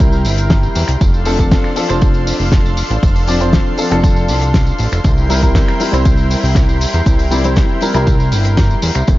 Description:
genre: nu-disco, nu disco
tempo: 119 BPM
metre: 4/4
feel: straight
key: unclear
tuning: A4 = 440 Hz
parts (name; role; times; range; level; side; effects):
- clear grand piano; accompaniment; 0.0-9.1 s; F3 to D5; -19 LUFS; left 1 dB; sidechain pumping, digital delay
- lush unison pad; sustained chords; 0.0-9.2 s; D4 to C6; -23 LUFS; equal; chorus, sidechain pumping
- fat analog bass; bass; 0.0-9.2 s; F1 to E2; -16 LUFS; equal; none
- damped 70s drum kit; drums; 0.0-9.2 s; finger snaps, hi-hat, snare drum, tambourine; -20 LUFS; left 1 dB; studio reverb
- electronic kick drum; drums; 0.0-9.2 s; none; -13 LUFS; equal; studio reverb
- tambourine; percussion; 0.0-9.2 s; none; -32 LUFS; right 3 dB; none
room: small room reverb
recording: dark, warm production, nothing above 7.5 kHz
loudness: -11 LUFS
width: side -17 dB against mid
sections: 0.0-9.2 A section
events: none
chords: 0.0 C7; 1.0 F6; 5.0 C7

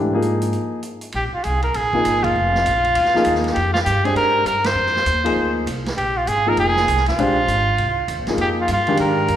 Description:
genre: modal jazz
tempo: 199 BPM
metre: 4/4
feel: swing 62% on 8ths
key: Bb mixolydian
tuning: A4 = 440 Hz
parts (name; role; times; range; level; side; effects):
- warm baby grand piano; accompaniment; 0.0-9.3 s; Eb3 to C5; -22 LUFS; left 1 dB; none
- upright bass; bass; 0.0-9.4 s; F1 to Ab2; -24 LUFS; equal; none
- vintage drum kit; drums; 0.2-9.4 s; hi-hat, kick drum, ride cymbal, snare drum; -30 LUFS; right 2 dB; none
- clear trumpet; melody; 1.2-9.4 s; F4 to C5; -18 LUFS; right 1 dB; none
room: wet recital hall reverb, RT60 1.6 s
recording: recorded in a church or concert hall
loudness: -16 LUFS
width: side -10 dB against mid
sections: 0.0-1.1 A section; 1.1-9.4 B section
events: upright bass solo 0.0-1.1; band accent 2.2, 4.6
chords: 0.0 Ebsus4; 1.1 Bb9sus4

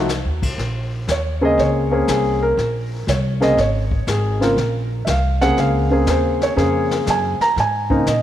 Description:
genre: jazz piano trio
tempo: 120 BPM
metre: 4/4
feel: swing 68% on 8ths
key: Bb minor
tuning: A4 = 439 Hz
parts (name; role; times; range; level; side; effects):
- warm grand piano; melody; 0.0-8.2 s; Db3 to Bb5; -18 LUFS; equal; none
- upright bass; bass; 0.0-8.2 s; Ab1 to Bb2; -21 LUFS; equal; none
- jazz brush drum kit; drums; 0.1-8.2 s; brushed snare drum, crash cymbal, hi-hat, kick drum, snare drum; -27 LUFS; left 3 dB; none
room: moderate echo chamber reverb, RT60 2.2 s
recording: 1960s-style stereo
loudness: -16 LUFS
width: side -11 dB against mid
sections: 0.6-8.2 A section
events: grand piano solo 0.6-8.2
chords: 0.0 F7(no3) (rootless); 0.6 Bbm9

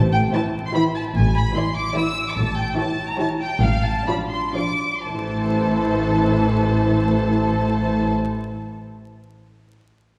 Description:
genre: quick classical-period movement for symphony orchestra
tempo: 117-151 BPM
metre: 3/4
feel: rubato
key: A minor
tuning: A4 = 436 Hz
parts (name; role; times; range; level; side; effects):
- bright studio double bass section; bass; 0.0-8.1 s; A1; -25 LUFS; equal; none
- rich studio cello section; bass; 0.0-8.1 s; A2; -28 LUFS; equal; none
- rich studio violin section; melody; 0.1-8.1 s; F5 to E6; -28 LUFS; equal; none
- warm studio violin section; second line; 0.3-8.1 s; E4 to D5; -30 LUFS; equal; none
- warm studio viola section; accompaniment; 0.3-8.1 s; E3 to E4; -27 LUFS; equal; none
room: wet concert hall reverb, RT60 2.3 s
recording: heard from further back in the room, vinyl crackle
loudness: -21 LUFS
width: mono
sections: 0.0-5.1 A section; 5.1-8.0 B section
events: slowing down 1.8-5.1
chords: 0.0 Am; 3.6 Dm/A; 5.1 Am

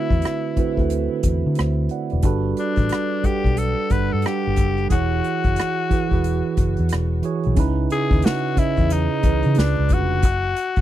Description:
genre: R&B, neo-soul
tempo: 90 BPM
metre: 4/4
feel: swing 61% on 16ths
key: unclear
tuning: A4 = 440 Hz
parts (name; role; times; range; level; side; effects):
- raspy tenor saxophone; melody; 0.0-10.8 s; D4 to B4; -25 LUFS; left 5 dB; tape echo
- mellow tine electric piano; accompaniment; 0.0-10.3 s; C#3 to F#5; -23 LUFS; right 6 dB; phaser
- vintage muted fingered electric bass; bass; 0.1-10.8 s; E1 to D3; -22 LUFS; left 1 dB; none
- unplugged drum kit; drums; 0.1-10.8 s; hi-hat, kick drum, rim click, snare drum; -21 LUFS; left 1 dB; none
room: little or no reverb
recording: dry, close 1970s-style studio recording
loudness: -18 LUFS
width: side -12 dB against mid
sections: 0.0-7.6 A section; 7.6-10.8 B section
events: none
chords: 0.0 D13; 2.2 Gmaj9; 4.9 E69; 7.6 C#m9; 9.6 C#7b9; 10.2 N.C.

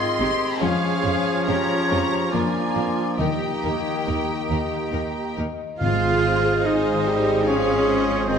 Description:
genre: classical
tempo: 70 BPM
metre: 3/4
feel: uneven beats, rubato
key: Ab major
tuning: A4 = 441 Hz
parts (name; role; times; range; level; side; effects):
- warm symphonic violin section; melody; 0.0-8.4 s; Eb5 to C6; -30 LUFS; left 4 dB; none
- clear clarinet; second line; 0.0-8.4 s; Bb3 to Ab4; -32 LUFS; left 2 dB; none
- small flute group; second line; 0.0-8.4 s; C5 to Ab6; -32 LUFS; right 3 dB; none
- warm oboe; second line; 0.0-8.4 s; C5 to F5; -29 LUFS; right 2 dB; none
- warm bassoon; accompaniment; 0.0-8.4 s; Eb3 to Ab3; -30 LUFS; right 3 dB; none
- concert harp; arpeggios; 0.0-8.4 s; Ab2 to Bb5; -30 LUFS; left 7 dB; none
- clear symphonic cello section; bass; 0.0-8.4 s; C4 to Ab4; -27 LUFS; right 2 dB; none
- warm symphonic violin section; second line; 0.2-8.4 s; Eb4 to F5; -35 LUFS; left 2 dB; none
- rich symphonic viola section; accompaniment; 0.2-8.4 s; Ab3 to Ab4; -31 LUFS; right 1 dB; none
- rich symphonic double bass section; bass; 0.2-8.4 s; Ab1 to F2; -30 LUFS; right 3 dB; none
- dark French horn section; sustained chords; 0.6-8.4 s; F3 to Ab4; -28 LUFS; left 2 dB; none
- timpani; percussion; 3.2-7.0 s; Ab2 to Eb3; -28 LUFS; right 1 dB; none
room: wet scoring stage reverb, RT60 1.7 s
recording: none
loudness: -19 LUFS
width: side -7 dB against mid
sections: 0.0-5.8 A section; 5.8-8.4 B section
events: none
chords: 0.0 Ab; 0.6 Db/F; 2.3 Bb7/F; 3.2 Eb; 5.8 Ab

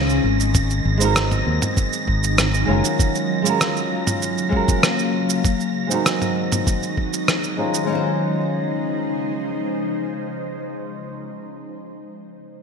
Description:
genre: sunset chillout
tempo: 98 BPM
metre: 4/4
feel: straight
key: Db major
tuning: A4 = 436 Hz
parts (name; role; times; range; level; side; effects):
- flamenco guitar; accompaniment; 0.0-11.8 s; Ab3 to C5; -25 LUFS; moving between left 5 dB and right 5 dB; auto-pan, low-pass filter, digital delay
- ethereal airy pad; sustained chords; 0.0-11.1 s; Db3 to F5; -24 LUFS; left 1 dB; ensemble chorus, built-in reverb, phaser
- fingered electric bass; bass; 0.0-2.8 s; Gb1 to Eb2; -20 LUFS; equal; none
- wind-like tuned noise texture; texture; 0.0-7.9 s; Bb6; -30 LUFS; right 4 dB; built-in reverb
- dusty soul sampler-style drum kit; drums; 0.1-7.9 s; rim click, shaker, toms; -22 LUFS; right 1 dB; overdrive
- electronic kick drum; drums; 0.5-7.1 s; none; -20 LUFS; equal; overdrive
room: wet lush hall reverb, RT60 1.9 s, digital ambience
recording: bright 1980s-style digital production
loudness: -18 LUFS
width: side -6 dB against mid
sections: 0.0-7.9 A section; 7.9-10.3 B section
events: filter sweep on nylon-string guitar 0.0-7.9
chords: 0.2 Ab7; 3.0 Gbmaj7; 5.4 Ab7; 7.9 Dbmaj9

